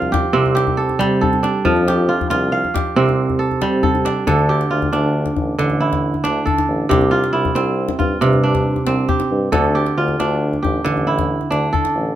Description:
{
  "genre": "west african traditional, West African string and xylophone music",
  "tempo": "91 BPM (dotted quarters)",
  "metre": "12/8",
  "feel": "straight",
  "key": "unclear",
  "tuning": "A4 = 440 Hz",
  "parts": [
    { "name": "kora", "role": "arpeggios", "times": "0.0-12.2 s", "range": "C3 to F5", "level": "-17 LUFS", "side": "right 2 dB", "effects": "none" },
    { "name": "clear tuba", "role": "bass", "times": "0.0-12.1 s", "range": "A1 to C3", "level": "-21 LUFS", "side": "left 1 dB", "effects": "none" },
    { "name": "djembe", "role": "percussion", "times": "0.0-11.9 s", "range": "none", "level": "-24 LUFS", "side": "left 5 dB", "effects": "none" }
  ],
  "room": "light reverb",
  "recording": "minimal, uncompressed stereo recording",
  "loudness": "-15 LUFS",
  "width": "side -12 dB against mid",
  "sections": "0.0-4.3 A section; 4.3-12.2 B section",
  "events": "none",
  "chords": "0.0 C5; 4.3 Dm; 6.9 C; 9.5 Dm"
}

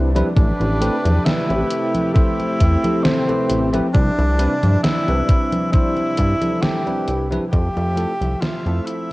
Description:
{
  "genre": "vaporwave",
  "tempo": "67 BPM",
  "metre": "4/4",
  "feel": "swing 54% on 16ths",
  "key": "C major",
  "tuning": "A4 = 440 Hz",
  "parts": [
    { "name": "bell-like tine electric piano", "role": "accompaniment", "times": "0.0-9.1 s", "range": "F3 to C5", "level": "-24 LUFS", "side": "equal", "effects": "wide subtle chorus" },
    { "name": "lush unison pad", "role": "sustained chords", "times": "0.0-9.1 s", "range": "C3 to E5", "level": "-28 LUFS", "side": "equal", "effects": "chorus" },
    { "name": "chorused synth bass", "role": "bass", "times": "0.0-8.8 s", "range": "A1 to G2", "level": "-18 LUFS", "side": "equal", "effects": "none" },
    { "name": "gated 80s digital drum machine", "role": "drums", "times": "0.2-9.1 s", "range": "congas, hi-hat, snare drum", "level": "-24 LUFS", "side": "equal", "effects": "gated reverb, gated reverb snare, overdrive, vintage 12-bit sampler grit" },
    { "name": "breathy tenor saxophone", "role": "melody", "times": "0.4-9.1 s", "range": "C4 to G4", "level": "-23 LUFS", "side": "equal", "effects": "none" },
    { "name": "electronic kick drum", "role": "drums", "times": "0.4-7.7 s", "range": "none", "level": "-16 LUFS", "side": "equal", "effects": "overdrive, vintage 12-bit sampler grit" }
  ],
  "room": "light reverb, digital ambience",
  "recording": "worn, warbling old tape, cassette tape, warbly pitch drift",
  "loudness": "-16 LUFS",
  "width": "side -20 dB against mid",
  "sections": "0.0-9.1 A section",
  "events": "fade-out 5.1-9.1",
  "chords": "0.4 Am9; 3.9 Cmaj9; 7.5 Fmaj7"
}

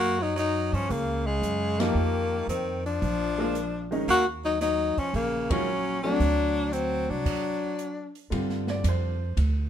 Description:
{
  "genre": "jazz, small-group swing and bop",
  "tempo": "113 BPM",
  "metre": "4/4",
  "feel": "swing 69% on 8ths",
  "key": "unclear",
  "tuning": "A4 = 439 Hz",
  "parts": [
    { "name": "breathy tenor saxophone", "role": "melody", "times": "0.0-8.2 s", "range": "Ab3 to Gb4", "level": "-27 LUFS", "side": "left 3 dB", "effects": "none" },
    { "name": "growling baritone saxophone", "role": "second line", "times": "0.0-8.1 s", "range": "Db3 to Bb3", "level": "-33 LUFS", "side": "right 4 dB", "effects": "none" },
    { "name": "upright bass", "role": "bass", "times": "0.0-9.7 s", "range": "Bb1 to G2", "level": "-29 LUFS", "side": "right 1 dB", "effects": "none" },
    { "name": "open jazz drum kit", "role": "drums", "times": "0.4-9.5 s", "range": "crash cymbal, hi-hat, kick drum, ride cymbal, snare drum", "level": "-34 LUFS", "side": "right 1 dB", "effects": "none" },
    { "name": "clear baby grand piano", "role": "accompaniment", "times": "1.8-9.4 s", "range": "D3 to D5", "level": "-30 LUFS", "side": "equal", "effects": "none" }
  ],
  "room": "light reverb",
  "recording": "minimal, uncompressed stereo recording",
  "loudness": "-24 LUFS",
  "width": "side -10 dB against mid",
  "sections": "0.0-8.3 A section; 8.3-9.7 B section",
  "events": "band accent 1.7, 5.4; stop 7.3-8.3",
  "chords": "0.0 Gb; 2.0 F9sus4; 3.0 Bb7; 4.1 Ebm7; 6.2 D; 8.3 G7(no3)"
}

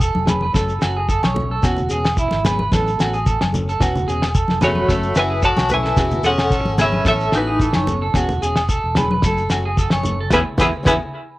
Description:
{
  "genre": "highlife guitar band",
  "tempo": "110 BPM",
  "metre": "4/4",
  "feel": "straight",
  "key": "E major",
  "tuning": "A4 = 438 Hz",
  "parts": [
    { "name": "electric guitar at the edge of break-up", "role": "arpeggios", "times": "0.0-11.0 s", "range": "E4 to C#5", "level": "-23 LUFS", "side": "right 3 dB", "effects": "spring reverb, cassette tape, analog delay" },
    { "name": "fingered electric bass", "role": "bass", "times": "0.0-11.0 s", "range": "E1 to E2", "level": "-24 LUFS", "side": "equal", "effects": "none" },
    { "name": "cloth-damped thuddy drum kit", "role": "drums", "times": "0.0-11.0 s", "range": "kick drum, snare drum", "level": "-20 LUFS", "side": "equal", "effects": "cassette tape" },
    { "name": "shekere", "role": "percussion", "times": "0.0-11.0 s", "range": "none", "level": "-29 LUFS", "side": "left 1 dB", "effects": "none" },
    { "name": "congas", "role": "percussion", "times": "0.1-11.0 s", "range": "none", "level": "-24 LUFS", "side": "left 1 dB", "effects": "none" },
    { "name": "nylon-string guitar", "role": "accompaniment", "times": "0.3-10.9 s", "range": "E3 to A4", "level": "-27 LUFS", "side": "left 2 dB", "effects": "cassette tape" },
    { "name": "agogo bells", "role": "percussion", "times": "0.3-11.0 s", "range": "none", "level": "-29 LUFS", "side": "left 3 dB", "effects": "none" },
    { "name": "semi-hollow electric guitar", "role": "melody", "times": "4.6-11.0 s", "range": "D#4 to A5", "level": "-19 LUFS", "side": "left 1 dB", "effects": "tremolo, cassette tape, analog delay" },
    { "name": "growling tenor saxophone", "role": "second line", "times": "4.6-10.9 s", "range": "E3 to F#4", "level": "-24 LUFS", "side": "left 1 dB", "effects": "cassette tape" }
  ],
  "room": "moderate booth ambience, RT60 0.3 s",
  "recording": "home recording on cassette",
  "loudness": "-16 LUFS",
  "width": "side -18 dB against mid",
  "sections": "0.0-11.4 A section",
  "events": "band accent 10.3-11.4",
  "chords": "0.0 E6; 0.6 F#m; 1.6 E6; 2.7 Aadd9; 3.8 E6; 4.9 F#m; 6.0 E6; 7.1 Aadd9; 8.2 E6; 9.2 F#m; 10.3 E6"
}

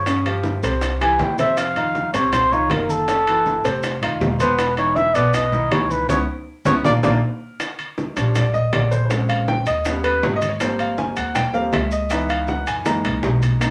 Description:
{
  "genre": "Afro-Cuban jazz",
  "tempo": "160 BPM",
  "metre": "4/4",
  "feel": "straight",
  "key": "unclear",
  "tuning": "A4 = 439 Hz",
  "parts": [
    { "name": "breathy trumpet", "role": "melody", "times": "0.0-7.1 s", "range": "A4 to Ab5", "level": "-22 LUFS", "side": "equal", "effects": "none" },
    { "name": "upright bass", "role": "bass", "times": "0.0-13.7 s", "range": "Fb1 to G2", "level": "-26 LUFS", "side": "equal", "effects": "none" },
    { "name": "clear grand piano", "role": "accompaniment", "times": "0.1-13.7 s", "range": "Cb3 to Bb5", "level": "-25 LUFS", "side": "equal", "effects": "none" },
    { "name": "bongos", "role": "percussion", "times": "0.1-13.7 s", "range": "none", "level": "-32 LUFS", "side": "equal", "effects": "none" },
    { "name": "congas", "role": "percussion", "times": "0.1-13.7 s", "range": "none", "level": "-32 LUFS", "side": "equal", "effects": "none" },
    { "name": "maracas", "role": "percussion", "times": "0.1-13.7 s", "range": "none", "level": "-41 LUFS", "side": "equal", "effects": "none" },
    { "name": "timbales", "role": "percussion", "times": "0.1-13.7 s", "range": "none", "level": "-30 LUFS", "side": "equal", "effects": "none" }
  ],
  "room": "wet studio ambience, RT60 0.5 s",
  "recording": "none",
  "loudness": "-20 LUFS",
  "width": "mono",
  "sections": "0.0-7.6 A section; 7.6-13.7 A section",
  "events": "trumpet solo 0.0-7.6; band accent 6.1-7.6; drum fill 6.5-7.6, 12.9-13.6; grand piano solo 7.6-13.7",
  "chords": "0.1 Dbmaj7#11; 0.8 C; 1.6 F5; 3.1 Gbm7; 3.8 F5; 4.6 E5; 6.1 Dbm7; 6.8 Bb; 7.6 Bb6; 9.1 Bbm9; 9.9 Ebaug7; 10.6 Abmaj13; 12.1 Dbm9; 12.9 Gb13"
}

